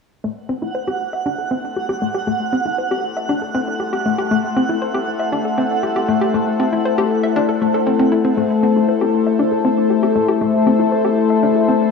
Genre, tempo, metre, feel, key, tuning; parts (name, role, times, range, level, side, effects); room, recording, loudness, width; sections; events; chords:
ambient, sequencer-driven space music; 118 BPM; 4/4; straight; A dorian; A4 = 440 Hz
sweeping resonant pad; sustained chords; 0.2-11.9 s; A3 to C5; -18 LUFS; left 4 dB; chorus
hollow square pluck; riff; 0.2-11.7 s; A3 to E5; -20 LUFS; left 3 dB; chorus, analog delay
twinkling granular texture; texture; 0.7-8.4 s; F#5; -25 LUFS; right 6 dB; built-in reverb
wet plate reverb, RT60 3.0 s; worn, warbling old tape, cassette tape, warbly pitch drift, small room ambience; -15 LUFS; side -5 dB against mid
0.2-8.4 A section; 8.4-11.9 B section
fade-in on analog synth pad 0.2-8.4; filter sweep on synth arpeggio sound 0.2-8.4
0.2 Am